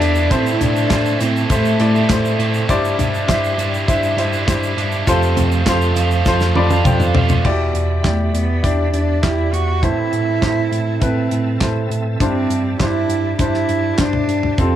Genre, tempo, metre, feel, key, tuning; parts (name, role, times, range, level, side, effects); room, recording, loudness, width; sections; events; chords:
piano-driven pop; 101 BPM; 4/4; straight; A4 = 440 Hz
warm cello; melody; 0.0-2.4, 8.1-14.8 s; A3 to F#4; -20 LUFS; right 2 dB; plate reverb
clear concert grand piano; accompaniment; 0.0-14.8 s; G2 to B5; -21 LUFS; left 2 dB; plate reverb
bright tonewheel organ; sustained chords; 0.0-14.8 s; C4 to C6; -30 LUFS; right 1 dB; chorus vibrato, fast rotary speaker, plate reverb
cranked stack guitar; riff; 0.0-7.5 s; A2 to C5; -22 LUFS; right 6 dB; overdrive
bell-like tine electric piano; bass; 0.0-14.8 s; E2 to A2; -20 LUFS; right 1 dB; fast stereo tremolo
damped 70s drum kit; drums; 0.0-14.7 s; crash cymbal, handclaps, hi-hat, kick drum, snare drum, toms; -19 LUFS; equal
egg shaker; percussion; 0.2-7.4 s; -39 LUFS; left 5 dB
light reverb; -14 LUFS; side -11 dB against mid
0.0-7.4 A section; 7.4-14.8 B section
drum fill 6.3-7.4; grand piano fill 6.3-7.4
0.3 Am; 2.7 Cadd9/G; 5.1 F; 7.4 Em7; 9.8 Am; 12.2 Cadd9/G